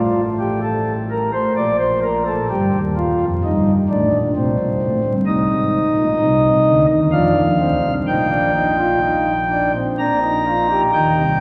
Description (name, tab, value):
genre	classical, baroque-style 3-part fugue for pipe organ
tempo	64 BPM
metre	3/4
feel	straight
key	Eb major from 5.3 s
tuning	A4 = 439 Hz
part	pipe organ, flutes	solo	0.0-11.4 s	Eb1 to Bb5	-17 LUFS	equal	none
room	wet cathedral reverb, RT60 4.7 s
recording	vinyl crackle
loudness	-17 LUFS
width	mono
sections	0.0-10.9 A section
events	none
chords	0.0 F/A; 1.6 Bb; 2.5 Ebmaj7; 4.3 Gmadd11; 5.3 Cm; 7.1 F5; 8.1 Eb/Bb; 10.0 Bb